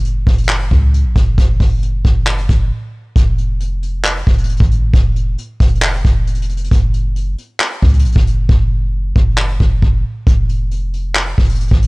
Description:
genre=hip hop, trap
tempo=135 BPM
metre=4/4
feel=half-time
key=F phrygian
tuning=A4 = 437 Hz
part: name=clean 808-style bass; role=bass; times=0.0-11.9 s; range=F1 to Db2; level=-15 LUFS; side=equal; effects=none
part: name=vintage brush drum kit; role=drums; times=0.0-11.9 s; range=handclaps, hi-hat, kick drum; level=-14 LUFS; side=equal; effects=vintage 12-bit sampler grit
room=little or no reverb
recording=dry, gritty hardware recording, cassette tape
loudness=-12 LUFS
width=side -26 dB against mid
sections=0.0-3.2 A section; 3.2-11.9 B section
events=break 2.7-3.2; hi-hats muted 8.5-10.3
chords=none

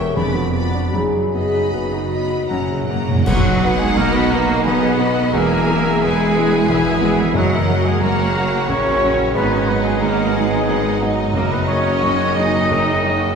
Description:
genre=classical, romantic movement for piano and orchestra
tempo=74-92 BPM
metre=3/4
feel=rubato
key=B major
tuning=A4 = 439 Hz
part: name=clear concert grand piano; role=melody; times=0.0-13.4 s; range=E1 to C#6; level=-20 LUFS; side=left 1 dB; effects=none
part: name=rich symphonic violin section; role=melody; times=0.0-13.4 s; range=C#5 to Cb6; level=-29 LUFS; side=left 1 dB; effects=none
part: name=clear symphonic violin section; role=second line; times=0.0-13.4 s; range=D#4 to F#5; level=-28 LUFS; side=left 1 dB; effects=none
part: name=rich symphonic viola section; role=accompaniment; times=0.0-13.4 s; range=Cb4 to E5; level=-27 LUFS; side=equal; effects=none
part: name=mellow French horn section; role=sustained chords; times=0.0-13.3 s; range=D#4 to C#5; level=-25 LUFS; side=left 2 dB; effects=none
part: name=bright studio cello section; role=bass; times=0.0-13.4 s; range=F2 to D#4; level=-23 LUFS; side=right 2 dB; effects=none
part: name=rich symphonic double bass section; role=bass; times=0.0-13.3 s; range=E1 to B1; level=-25 LUFS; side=right 4 dB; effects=none
part: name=mellow clarinet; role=second line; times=0.2-2.8 s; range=C#4 to D#4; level=-33 LUFS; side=left 1 dB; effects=none
part: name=mellow silver concert flute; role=second line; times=0.2-13.4 s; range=E5 to D#6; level=-27 LUFS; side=right 1 dB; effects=none
part: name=timpani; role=percussion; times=2.5-12.3 s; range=F#2 to B2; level=-24 LUFS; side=equal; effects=none
part: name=warm trumpet section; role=stabs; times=3.3-13.4 s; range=E4 to D#5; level=-24 LUFS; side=equal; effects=none
part: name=clash cymbals and concert bass drum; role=percussion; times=3.3-4.6 s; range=none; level=-28 LUFS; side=equal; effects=none
room=wet scoring stage reverb, RT60 1.9 s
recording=heard from further back in the room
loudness=-15 LUFS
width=side -6 dB against mid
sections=0.0-3.3 A section; 3.3-13.4 B section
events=timpani fill 2.5-3.3; band accent 3.3-4.0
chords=0.2 Fdim7; 0.9 B/F#; 2.5 F#; 3.3 B; 5.3 E; 7.4 F#; 9.4 G#m7; 11.3 D#m/F#

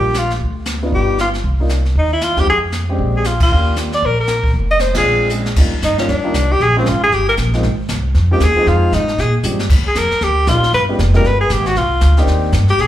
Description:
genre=jazz, small-group swing and bop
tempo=233 BPM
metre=4/4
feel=swing 61% on 8ths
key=Eb major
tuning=A4 = 438 Hz
part: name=bright alto saxophone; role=melody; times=0.0-12.9 s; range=C4 to Eb5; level=-16 LUFS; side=left 1 dB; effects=slapback echo
part: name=warm concert grand piano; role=accompaniment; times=0.0-12.5 s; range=F3 to Ab4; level=-22 LUFS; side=left 1 dB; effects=slapback echo
part: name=upright bass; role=bass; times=0.0-12.9 s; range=F1 to Bb2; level=-16 LUFS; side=equal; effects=none
part: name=jazz brush drum kit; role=drums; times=0.1-12.9 s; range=brushed snare drum, crash cymbal, hi-hat, kick drum, ride cymbal, snare drum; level=-21 LUFS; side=equal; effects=none
room=light reverb, studio reverb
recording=live gig heard through the venue's PA, club reverb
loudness=-13 LUFS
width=side -12 dB against mid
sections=0.0-5.6 A section; 5.6-12.9 B section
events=band accent 3.4, 4.9; drum fill 5.3, 9.4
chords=0.4 Dm6; 0.9 G7b13; 1.4 Cm; 2.5 Fmadd9; 3.0 Bb13; 3.5 Ebmaj9; 4.5 Fm; 5.1 Bb7; 5.6 Ebmaj7; 6.6 Bbm7; 7.1 Eb69; 7.6 Ab6; 8.7 Fm7; 9.2 Bb13; 9.7 Ebmaj9; 10.7 G7b9; 11.8 Cm7

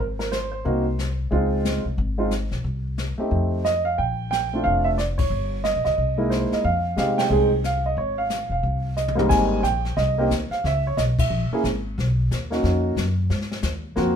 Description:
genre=jazz piano trio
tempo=180 BPM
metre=4/4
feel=swing 62% on 8ths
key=F minor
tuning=A4 = 440 Hz
part: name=warm grand piano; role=melody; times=0.0-14.2 s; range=Ab2 to Ab5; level=-22 LUFS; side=right 2 dB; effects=none
part: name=upright bass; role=bass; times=0.0-14.2 s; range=E1 to C3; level=-24 LUFS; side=left 1 dB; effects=none
part: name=jazz brush drum kit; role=drums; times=0.0-14.2 s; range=brushed snare drum, crash cymbal, hi-hat, kick drum, ride cymbal, snare drum, toms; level=-30 LUFS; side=left 3 dB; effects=none
room=moderate studio reverb, RT60 0.7 s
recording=minimal, uncompressed stereo recording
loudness=-20 LUFS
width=side -8 dB against mid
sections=0.0-9.3 A section; 9.3-14.2 B section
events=band accent 5.1, 7.1, 11.1; drum fill 9.0-9.3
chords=0.0 Ab; 1.3 Dbmaj9; 2.7 N.C.; 3.3 F9; 4.0 Bbmaj7; 5.3 Gdim; 6.0 C7alt; 6.6 Fm7; 9.3 Abmaj9; 10.6 Bsus2; 11.3 Bb7(b5, no3); 12.0 Bmaj7; 13.3 Ab13

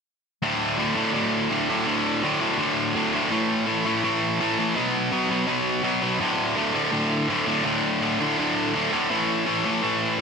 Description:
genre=punk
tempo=166 BPM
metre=4/4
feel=straight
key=D major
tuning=A4 = 445 Hz
part: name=distorted electric guitar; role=solo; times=0.4-10.2 s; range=D2 to B3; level=-21 LUFS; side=equal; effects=overdrive, ping-pong delay
room=wet lush hall reverb, RT60 2.5 s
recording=big arena sound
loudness=-21 LUFS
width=side -5 dB against mid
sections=0.4-10.2 A section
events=none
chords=0.4 D5; 3.3 A5; 4.8 B5; 6.2 D5; 9.1 A5

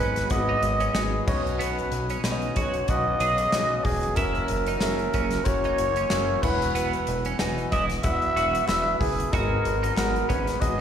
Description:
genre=piano-driven pop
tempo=93 BPM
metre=4/4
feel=swing 56% on 16ths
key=B major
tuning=A4 = 440 Hz
part: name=trumpet with bucket mute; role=melody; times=0.0-10.8 s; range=G#4 to E5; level=-26 LUFS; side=right 1 dB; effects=slapback echo, ping-pong delay
part: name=warm concert grand piano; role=accompaniment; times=0.0-10.8 s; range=G#2 to G#5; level=-30 LUFS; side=left 4 dB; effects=slapback echo
part: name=percussive tonewheel organ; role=sustained chords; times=0.0-10.8 s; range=B2 to F#4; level=-38 LUFS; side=right 2 dB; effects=none
part: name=twelve-string electric guitar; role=riff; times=0.0-10.5 s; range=B3 to G#4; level=-32 LUFS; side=right 8 dB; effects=analog chorus, slapback echo
part: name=chorused synth bass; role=bass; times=0.0-10.8 s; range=E1 to B1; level=-29 LUFS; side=equal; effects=none
part: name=natural country drum kit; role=drums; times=0.2-10.8 s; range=crash cymbal, hi-hat, kick drum, snare drum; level=-30 LUFS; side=equal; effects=none
part: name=group handclap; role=percussion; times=1.0-10.1 s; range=none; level=-42 LUFS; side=left 3 dB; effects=none
room=light reverb, small room ambience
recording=live gig heard through the venue's PA, recital hall reverb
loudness=-22 LUFS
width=side -8 dB against mid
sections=0.0-10.8 A section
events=none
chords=0.0 G#m7; 1.3 Badd9; 4.2 F#7; 6.4 Esus2; 9.3 G#m7

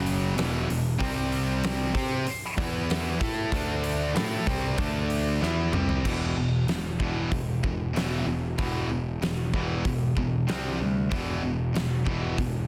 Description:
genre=hard rock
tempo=95 BPM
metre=4/4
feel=straight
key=E minor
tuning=A4 = 442 Hz
part: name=distorted electric guitar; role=riff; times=0.0-12.7 s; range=E2 to C5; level=-34 LUFS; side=equal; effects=distortion
part: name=heavy high-gain guitar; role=riff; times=0.0-12.7 s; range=E2 to C5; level=-33 LUFS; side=equal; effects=distortion
part: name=modern bright picked electric bass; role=bass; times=0.0-12.7 s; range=E1 to C3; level=-32 LUFS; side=equal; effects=none
part: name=big rock drum kit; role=drums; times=0.1-12.5 s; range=crash cymbal, hi-hat, kick drum, snare drum, toms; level=-33 LUFS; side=equal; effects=none
room=studio ambience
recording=dense, heavily limited modern master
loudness=-27 LUFS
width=mono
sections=0.0-6.1 A section; 6.1-12.7 B section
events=drum fill 5.4-6.1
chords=0.4 E5; 1.0 C5; 2.6 E5; 3.2 A5; 3.5 D5; 4.2 C5; 4.8 D5; 5.4 C5; 6.1 E5; 10.5 C5; 11.1 E5

